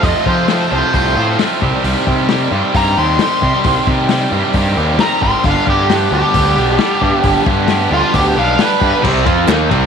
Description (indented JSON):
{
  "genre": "classic rock",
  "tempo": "133 BPM",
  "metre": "4/4",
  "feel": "straight",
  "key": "unclear",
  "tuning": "A4 = 438 Hz",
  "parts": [
    { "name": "smooth overdriven lead guitar", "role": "melody", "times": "0.0-9.0 s", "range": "F4 to C6", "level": "-17 LUFS", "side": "equal", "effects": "wah" },
    { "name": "distorted electric guitar", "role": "riff", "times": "0.0-9.9 s", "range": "F2 to G4", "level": "-16 LUFS", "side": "right 1 dB", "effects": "overdrive" },
    { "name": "fuzz picked electric bass", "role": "bass", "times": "0.0-9.9 s", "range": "G1 to F3", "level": "-18 LUFS", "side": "equal", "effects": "overdrive" },
    { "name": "vintage drum kit", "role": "drums", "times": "0.0-9.8 s", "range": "crash cymbal, hi-hat, kick drum, ride cymbal, snare drum", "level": "-19 LUFS", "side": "left 4 dB", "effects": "none" },
    { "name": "tight distorted guitar", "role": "riff", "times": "9.0-9.9 s", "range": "C3 to F4", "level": "-18 LUFS", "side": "right 1 dB", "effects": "distortion" },
    { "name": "group handclap", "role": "percussion", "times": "9.5-9.6 s", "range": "none", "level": "-25 LUFS", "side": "right 13 dB", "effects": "none" }
  ],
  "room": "light reverb, small room ambience",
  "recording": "1960s-style stereo",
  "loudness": "-11 LUFS",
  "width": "side -7 dB against mid",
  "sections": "0.0-9.0 A section",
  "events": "lead electric guitar solo 0.0-9.0",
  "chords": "0.0 F; 1.6 Cm; 5.4 G; 9.0 Cm"
}